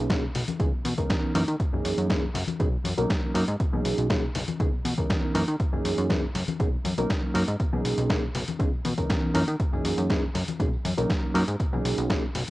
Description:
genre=filtered disco house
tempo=120 BPM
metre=4/4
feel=straight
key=B major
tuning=A4 = 438 Hz
part: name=barky reed electric piano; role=accompaniment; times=0.0-12.2 s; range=E3 to A#4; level=-28 LUFS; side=right 1 dB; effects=overdrive, phaser, sidechain pumping, low-pass filter, cassette tape
part: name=plucky analog bass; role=bass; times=0.0-12.4 s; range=F#1 to D#3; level=-29 LUFS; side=equal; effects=sidechain pumping, low-pass filter
part: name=dusty soul sampler-style drum kit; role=drums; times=0.1-12.5 s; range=hi-hat, snare drum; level=-32 LUFS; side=equal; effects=overdrive, sidechain pumping on hats, cassette tape, sidechain pumping on cymbals
part: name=electronic kick drum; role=drums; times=0.1-12.2 s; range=none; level=-28 LUFS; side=equal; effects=cassette tape
part: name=tambourine and congas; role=percussion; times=0.1-12.5 s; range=none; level=-36 LUFS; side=left 5 dB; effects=sidechain pumping on perc, low-pass filter on perc
room=light reverb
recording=home recording on cassette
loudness=-24 LUFS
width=side -18 dB against mid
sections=0.0-12.5 A section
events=filter sweep 0.0-12.5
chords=0.0 Bmaj13; 0.6 C#m9; 1.3 F#13; 2.6 Bmaj13; 4.6 C#m9; 5.3 F#13; 6.6 Bmaj13; 8.6 C#m9; 9.3 F#13; 10.6 Bmaj13

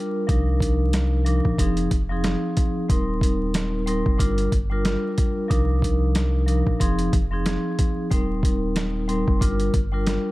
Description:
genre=hip hop, boom-bap hip-hop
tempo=92 BPM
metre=4/4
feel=swing 56% on 16ths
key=C minor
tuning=A4 = 440 Hz
part: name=vibraphone with soft mallets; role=accompaniment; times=0.0-10.3 s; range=F3 to Bb4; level=-24 LUFS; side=left 1 dB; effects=cassette tape, high-pass filter, low-pass filter
part: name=soft dub sub bass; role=bass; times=0.3-10.2 s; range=Eb1 to C2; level=-24 LUFS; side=equal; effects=none
part: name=boom bap sampler-style drum kit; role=drums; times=0.3-10.2 s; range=hi-hat, kick drum, snare drum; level=-23 LUFS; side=equal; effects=none
room=little or no reverb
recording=vinyl crackle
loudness=-20 LUFS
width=side -18 dB against mid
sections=0.3-10.3 A section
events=break 0.0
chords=0.3 Cm11; 1.6 Fm7; 2.9 Eb6; 4.2 Gm7; 5.5 Cm11; 6.8 Fm7; 8.1 Eb6; 9.4 Gm7

